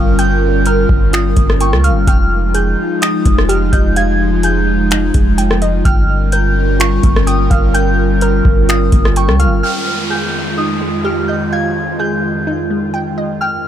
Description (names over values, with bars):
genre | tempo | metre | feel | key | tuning
hip hop, atmospheric cloud-rap | 127 BPM | 4/4 | half-time | F minor | A4 = 437 Hz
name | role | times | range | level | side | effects
soft synth bell | melody | 0.0-13.7 s | Db6 to Ab6 | -20 LUFS | equal | chorus, ping-pong delay
airy breathy pad | sustained chords | 0.0-13.7 s | F2 to Bb4 | -17 LUFS | equal | chorus
glassy wavetable pluck | arpeggios | 0.0-13.7 s | Ab3 to G5 | -22 LUFS | right 1 dB | chorus, ping-pong delay
long sustained 808-style bass | bass | 0.0-9.6 s | F1 to Db2 | -14 LUFS | equal | none
booming analog drum machine | drums | 0.2-9.5 s | finger snaps, hi-hat, kick drum, rim click | -14 LUFS | equal | overdrive
downlifter | sound effects | 9.6-13.4 s | none | -25 LUFS | equal | none
room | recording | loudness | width
little or no reverb | none | -11 LUFS | side -10 dB against mid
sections
0.0-9.6 A section; 9.6-13.7 B section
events
none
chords
0.0 Gm7b5; 2.1 Fm9; 5.9 Gm7b5; 9.6 Fm9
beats
| 0.18 0.66 1.13 1.60 | 2.07 2.55 3.02 3.49 | 3.96 4.44 4.91 5.38 | 5.85 6.33 6.80 7.27 | 7.74 8.22 8.69 9.16 | 9.63 10.11 10.58 11.05 | 11.52 12.00 12.47 12.94 | 13.41